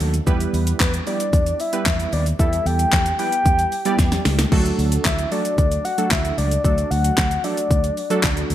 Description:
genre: dance-pop.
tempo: 113 BPM.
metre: 4/4.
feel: straight.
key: E minor.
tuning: A4 = 440 Hz.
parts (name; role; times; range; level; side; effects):
warm analog keys; accompaniment; 0.0-8.5 s; F#3 to D5; -25 LUFS; right 3 dB; chorus, sidechain pumping.
vintage muted fingered electric bass; bass; 0.0-8.5 s; C#2 to E2; -22 LUFS; equal; sidechain pumping.
pop drum kit; drums; 0.0-8.5 s; crash cymbal, handclaps, hi-hat, kick drum, shaker, snare drum; -21 LUFS; equal; gated reverb.
soft octave-layered synth lead; melody; 0.8-8.5 s; B4 to G5; -23 LUFS; left 2 dB; chorus.
room: light reverb.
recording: bright 1980s-style digital production.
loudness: -17 LUFS.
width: side -12 dB against mid.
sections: 0.0-8.5 A section.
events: drum fill 4.0-4.5.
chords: 0.3 Em; 4.5 D.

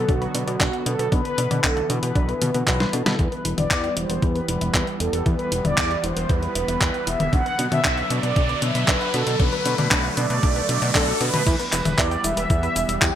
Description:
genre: italo disco.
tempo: 116 BPM.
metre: 4/4.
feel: straight.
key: E minor.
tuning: A4 = 442 Hz.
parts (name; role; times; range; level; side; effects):
mellow synth brass; melody; 0.0-13.2 s; F#4 to F#5; -26 LUFS; right 1 dB; chorus, digital delay.
warm analog pad; sustained chords; 0.0-13.2 s; D3 to B3; -29 LUFS; left 1 dB; chorus.
analog pluck; arpeggios; 0.0-13.1 s; D4 to C6; -31 LUFS; equal; chorus, digital delay.
fat analog bass; bass; 0.0-13.1 s; E1 to B2; -26 LUFS; equal; tube saturation.
clean 12-bit digital drum machine; drums; 0.1-13.1 s; cabasa, crash cymbal, handclaps, hi-hat, snare drum, toms; -24 LUFS; left 1 dB; none.
electronic kick drum; drums; 0.1-13.1 s; none; -23 LUFS; equal; none.
riser; sound effects; 5.4-11.5 s; none; -30 LUFS; equal; none.
room: moderate plate reverb, RT60 1.2 s.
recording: bright 1980s-style digital production.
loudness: -19 LUFS.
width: side -10 dB against mid.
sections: 0.0-3.2 A section; 3.2-11.5 B section; 11.5-13.2 C section.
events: drum fill 2.8-3.2; filter sweep on synth arpeggio sound 3.2-11.5; riser 5.4-11.5.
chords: 0.0 Bm; 3.2 Em; 7.3 Bm; 11.5 Em.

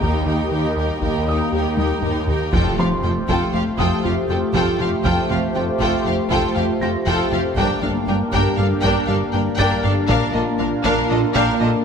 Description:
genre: cinematic, hybrid orchestral and electronic film score.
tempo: 119 BPM.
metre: 5/4.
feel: straight.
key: unclear.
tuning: A4 = 439 Hz.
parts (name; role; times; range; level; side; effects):
clear symphonic violin section; second line; 0.0-11.7 s; G4 to G5; -28 LUFS; left 1 dB; none.
dark studio viola section; accompaniment; 0.0-11.7 s; D4 to G4; -26 LUFS; equal; none.
mellow French horn section; sustained chords; 0.0-11.8 s; A3 to G4; -28 LUFS; left 3 dB; none.
phased analog pad; sustained chords; 0.0-11.8 s; A3 to Eb5; -24 LUFS; equal; phaser, chorus.
glassy wavetable pluck; arpeggios; 0.0-11.8 s; Eb3 to Bb4; -28 LUFS; right 3 dB; none.
round analog bass; riff; 0.0-11.8 s; Eb2 to Bb3; -26 LUFS; left 2 dB; none.
warm studio cello section; bass; 0.0-11.7 s; Eb2 to Bb2; -26 LUFS; right 2 dB; none.
taiko ensemble; drums; 0.0-11.8 s; none; -28 LUFS; equal; none.
dark grand piano; texture; 0.0-11.8 s; C5 to Bb6; -32 LUFS; equal; ping-pong delay.
warm symphonic violin section; melody; 2.5-11.7 s; Eb5 to G5; -26 LUFS; left 2 dB; none.
rich symphonic double bass section; bass; 2.5-11.7 s; F1 to Bb1; -27 LUFS; right 3 dB; none.
impact; sound effects; 2.5-5.1 s; none; -28 LUFS; equal; none.
room: wet recital hall reverb, RT60 1.7 s.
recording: none.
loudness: -17 LUFS.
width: side -6 dB against mid.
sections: 0.0-2.5 A section; 2.5-11.8 B section.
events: drum fill 1.8-2.5; impact 2.5-5.1.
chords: 0.0 Eb; 2.5 Fadd9; 7.6 Gm; 10.1 Bb.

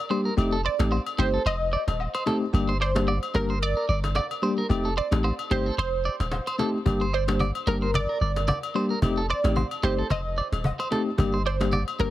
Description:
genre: afrobeats.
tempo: 111 BPM.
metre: 4/4.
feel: swing 55% on 16ths.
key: unclear.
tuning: A4 = 439 Hz.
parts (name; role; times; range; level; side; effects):
bell-like tine electric piano; accompaniment; 0.1-12.1 s; G3 to G4; -27 LUFS; left 2 dB; medium stereo tremolo.
clean electric guitar; riff; 0.1-12.1 s; G4 to D5; -31 LUFS; right 3 dB; tremolo, tape echo.
cajon; drums; 0.1-12.1 s; none; -31 LUFS; equal; none.
punchy sub bass; bass; 0.4-12.1 s; Eb1 to A1; -26 LUFS; equal; none.
agogo bells and woodblock; percussion; 0.4-12.0 s; none; -35 LUFS; left 6 dB; none.
analog pluck; melody; 0.7-12.1 s; Bb4 to Eb5; -30 LUFS; right 2 dB; chorus, tape echo.
room: little or no reverb.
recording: heavily compressed radio sound, multiband compression.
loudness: -23 LUFS.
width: side -14 dB against mid.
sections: 0.0-12.1 A section.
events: break 0.0-6.9.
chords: 0.4 F7; 2.5 Gm; 4.7 F7; 6.9 Gm; 9.0 F7; 11.2 Gm.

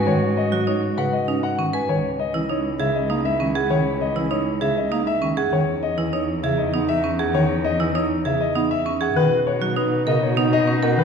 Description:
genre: classical, minimalist pattern music.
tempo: 198 BPM.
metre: 6/4.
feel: straight.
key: C# dorian.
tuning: A4 = 439 Hz.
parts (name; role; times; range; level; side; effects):
warm baby grand piano; melody; 0.0-11.0 s; B4 to G#5; -24 LUFS; left 5 dB; none.
warm clarinet; second line; 0.0-11.0 s; D#4 to F#4; -30 LUFS; left 2 dB; none.
marimba with medium hard mallets; arpeggios; 0.0-11.0 s; C#4 to B4; -24 LUFS; right 4 dB; none.
rich cello; bass; 0.0-11.0 s; C#2 to B2; -26 LUFS; right 1 dB; none.
dark bass clarinet; accompaniment; 0.1-11.0 s; C#3 to C#4; -27 LUFS; equal; none.
room: wet scoring stage reverb, RT60 1.5 s.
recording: heard from further back in the room.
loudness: -19 LUFS.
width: side -6 dB against mid.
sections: 0.0-11.0 A section.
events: none.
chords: 0.0 G#m7; 1.9 C#madd9; 5.5 Emaj7; 9.2 Bmaj9.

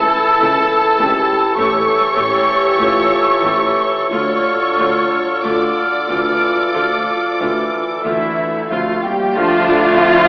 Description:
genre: classical, slow romantic movement for symphony orchestra.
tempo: 44-53 BPM.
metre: 4/4.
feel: rubato.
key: D minor.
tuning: A4 = 440 Hz.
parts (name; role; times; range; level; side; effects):
warm symphonic violin section; melody; 0.0-10.3 s; E5 to D6; -19 LUFS; equal; none.
clear clarinet; second line; 0.0-10.3 s; A3 to G4; -22 LUFS; equal; none.
small flute group; second line; 0.0-10.3 s; E5 to F6; -20 LUFS; equal; none.
warm cor anglais; second line; 0.0-10.3 s; A4 to A5; -22 LUFS; equal; none.
warm symphonic violin section; second line; 0.0-10.3 s; C4 to D5; -22 LUFS; equal; none.
warm bassoon; accompaniment; 0.0-10.3 s; C3 to F3; -24 LUFS; equal; none.
mellow French horn section; sustained chords; 0.0-10.3 s; E3 to A4; -23 LUFS; left 1 dB; none.
warm tuba; bass; 0.0-9.0 s; A1 to D2; -27 LUFS; equal; none.
rich symphonic viola section; accompaniment; 0.4-10.3 s; F3 to G4; -24 LUFS; equal; none.
rich symphonic double bass section; bass; 0.4-10.3 s; A1 to D2; -33 LUFS; equal; none.
warm symphonic cello section; bass; 0.4-10.3 s; A2 to G4; -18 LUFS; equal; none.
room: wet scoring stage reverb, RT60 2.0 s.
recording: heard from further back in the room, AM radio sound.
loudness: -12 LUFS.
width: side -24 dB against mid.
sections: 0.0-9.3 A section.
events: none.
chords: 0.0 A/C#; 1.6 A7; 4.1 Dm.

